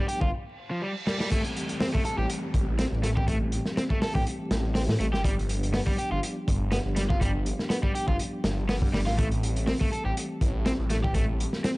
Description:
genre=breakbeat, breaks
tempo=122 BPM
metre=4/4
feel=swing 54% on 16ths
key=A minor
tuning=A4 = 439 Hz
part: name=mellow tonewheel organ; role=sustained chords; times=0.0-11.8 s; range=E3 to G4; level=-35 LUFS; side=left 1 dB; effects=chorus vibrato, fast rotary speaker, sidechain pumping
part: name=overdriven semi-hollow guitar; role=riff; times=0.0-11.7 s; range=F3 to A4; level=-32 LUFS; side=equal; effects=dub echo
part: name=crunchy breakbeat drum kit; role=drums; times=0.1-11.8 s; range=crash cymbal, hi-hat, kick drum, snare drum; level=-28 LUFS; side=equal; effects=none
part: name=phased detuned saw bass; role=bass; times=0.2-11.5 s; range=G1 to A2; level=-28 LUFS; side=equal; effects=phaser
part: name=reverse cymbal and downlifter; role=sound effects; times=0.5-5.2 s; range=none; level=-40 LUFS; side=right 1 dB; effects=none
room=small room ambience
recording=vinyl crackle, nothing above 10.4 kHz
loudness=-24 LUFS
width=side -22 dB against mid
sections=0.0-1.3 A section; 1.3-11.8 B section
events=break 0.3-1.3; reverse cymbal 0.5-1.3; drum fill 1.1; drop 1.3-11.8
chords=0.0 G7; 1.3 Am7; 5.2 G7; 9.2 Am7

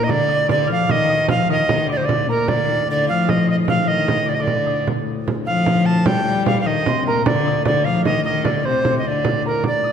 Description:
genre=medieval dance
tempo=101 BPM (dotted quarters)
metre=6/8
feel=straight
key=D phrygian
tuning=A4 = 439 Hz
part: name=bright reedy tenor recorder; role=melody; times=0.0-9.9 s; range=Bb4 to A5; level=-20 LUFS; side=right 2 dB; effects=none
part: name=concert harp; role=second line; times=0.0-9.9 s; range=Bb5 to A6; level=-29 LUFS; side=right 4 dB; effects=none
part: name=rich viola da gamba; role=second line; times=0.0-9.6 s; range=Bb2 to G3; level=-21 LUFS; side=left 4 dB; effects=none
part: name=pedal harmonium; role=drone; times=0.0-9.9 s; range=D2 to A2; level=-28 LUFS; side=left 1 dB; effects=none
part: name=frame drum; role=percussion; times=0.1-9.8 s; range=none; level=-23 LUFS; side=right 4 dB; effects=none
room=wet scoring stage reverb, RT60 1.8 s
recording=none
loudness=-16 LUFS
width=side -7 dB against mid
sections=0.1-9.6 A section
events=none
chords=none

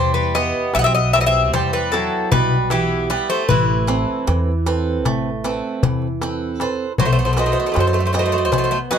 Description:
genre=greek folk, Greek bouzouki band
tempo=154 BPM (eighths)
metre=9/8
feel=straight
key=E harmonic minor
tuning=A4 = 440 Hz
part: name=Greek bouzouki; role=melody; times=0.0-9.0 s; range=G4 to F#5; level=-20 LUFS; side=left 4 dB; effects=plate reverb
part: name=Greek bouzouki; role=second line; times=0.0-9.0 s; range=E3 to D#4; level=-25 LUFS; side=right 5 dB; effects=none
part: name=picked swing-style acoustic guitar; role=accompaniment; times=0.0-9.0 s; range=B2 to G5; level=-23 LUFS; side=right 5 dB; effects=none
part: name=upright bass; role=bass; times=0.0-9.0 s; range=A1 to F#2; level=-22 LUFS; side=equal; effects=none
part: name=darbuka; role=percussion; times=0.1-9.0 s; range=none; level=-22 LUFS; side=left 4 dB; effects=none
room=light reverb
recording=close, detailed microphones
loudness=-16 LUFS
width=side -8 dB against mid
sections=0.0-9.0 A section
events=none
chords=0.0 Em; 3.5 Amadd9; 7.0 B

